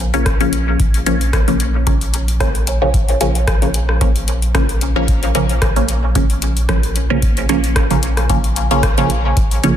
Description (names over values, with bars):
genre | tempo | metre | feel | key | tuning
dub techno | 112 BPM | 4/4 | swing 54% on 16ths | Bb minor | A4 = 440 Hz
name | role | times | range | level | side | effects
soft dub sub bass | bass | 0.0-9.8 s | Bb1 | -19 LUFS | equal | sidechain pumping
filtered dub chord stab | stabs | 0.1-9.7 s | Db3 to Db4 | -18 LUFS | equal | phaser, sidechain pumping, dub echo
booming analog drum machine | drums | 0.1-9.8 s | hi-hat, rim click | -23 LUFS | left 2 dB | soft clipping on snare
electronic kick drum | drums | 0.3-9.5 s | none | -18 LUFS | equal | none
room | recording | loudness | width
light reverb, digital ambience | dense, heavily limited modern master | -13 LUFS | side -10 dB against mid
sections
0.0-9.8 A section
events
none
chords
0.0 Bbm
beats
0.26 | 0.80 1.33 1.87 2.40 | 2.94 3.48 4.01 4.55 | 5.08 5.62 6.15 6.69 | 7.22 7.76 8.30 8.83 | 9.37